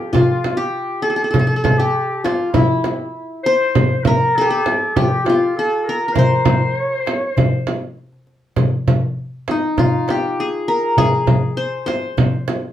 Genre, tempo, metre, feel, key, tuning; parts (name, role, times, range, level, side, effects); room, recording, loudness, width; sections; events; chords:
Turkish makam ensemble; 100 BPM; 4/4; straight; C makam hicaz, F makam nihavent from 8.6 s; A4 = 440 Hz
qanun; melody; 0.0-12.7 s; Eb4 to C5; -19 LUFS; left 1 dB
clear clarinet; second line; 0.0-7.9 s; E4 to C5; -22 LUFS; left 2 dB
darbuka; percussion; 0.1-12.6 s; -19 LUFS; left 1 dB
frame drum; percussion; 0.1-12.6 s; -20 LUFS; right 3 dB
wet studio ambience, RT60 0.5 s; band playing live in one room; -15 LUFS; side -11 dB against mid
0.0-8.6 A section; 8.6-12.7 B section